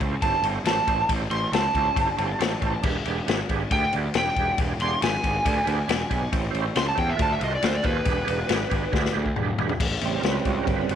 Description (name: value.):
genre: blues rock power trio and southern rock.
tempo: 138 BPM.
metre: 4/4.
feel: straight.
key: unclear.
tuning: A4 = 440 Hz.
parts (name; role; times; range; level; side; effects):
overdriven tonewheel organ; sustained chords; 0.0-11.0 s; C#3 to D5; -30 LUFS; right 10 dB; slow rotary speaker, chorus vibrato.
fuzz picked electric bass; bass; 0.0-11.0 s; E1 to E2; -28 LUFS; equal; overdrive.
vintage drum kit; drums; 0.0-11.0 s; crash cymbal, kick drum, ride cymbal, snare drum, toms; -26 LUFS; left 3 dB; none.
overdriven slide guitar; melody; 0.2-9.1 s; B4 to B#5; -26 LUFS; right 1 dB; none.
room: light reverb, small room ambience.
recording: 1960s-style stereo.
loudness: -22 LUFS.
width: side -9 dB against mid.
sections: 0.0-9.8 A section; 9.8-11.0 A section.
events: electric slide guitar solo 0.0-9.8; drum fill 8.9-9.8; tonewheel organ solo 9.8-11.0.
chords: 0.0 A7#9; 2.8 E7#9; 6.3 A7#9; 7.2 D7#9; 8.1 E7#9; 9.8 A7#9.